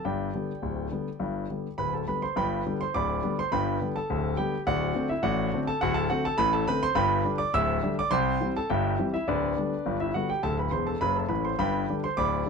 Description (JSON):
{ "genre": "ragtime piano", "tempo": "104 BPM", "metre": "2/4", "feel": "straight", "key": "G major", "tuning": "A4 = 438 Hz", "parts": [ { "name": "clear concert grand piano", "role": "solo", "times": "0.0-12.5 s", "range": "D1 to E6", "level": "-25 LUFS", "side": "equal", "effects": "none" } ], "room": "moderate studio reverb, RT60 0.7 s", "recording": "dark, warm production", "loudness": "-25 LUFS", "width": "side -5 dB against mid", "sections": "0.0-2.4 A section; 2.4-12.5 A section", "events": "grand piano fill 10.7-11.6", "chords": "0.0 G; 4.7 D7; 7.0 G; 8.1 C; 9.3 G/D; 10.4 D; 11.6 G" }